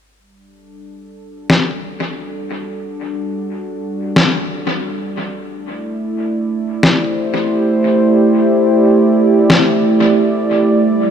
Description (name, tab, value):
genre	ambient dub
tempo	90 BPM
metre	4/4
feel	swing 56% on 16ths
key	A dorian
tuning	A4 = 441 Hz
part	warm analog pad	sustained chords	0.2-11.1 s	G3 to D5	-14 LUFS	right 1 dB	chorus
part	electronic snare drum	drums	1.5-9.6 s	none	-16 LUFS	left 1 dB	overdrive, studio ambience, dub echo
room	wet echo chamber reverb, RT60 2.1 s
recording	faint mains hum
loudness	-12 LUFS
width	side -8 dB against mid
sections	0.2-11.1 A section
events	fade-in on analog synth pad 0.2-11.1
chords	0.2 G5; 5.5 Am7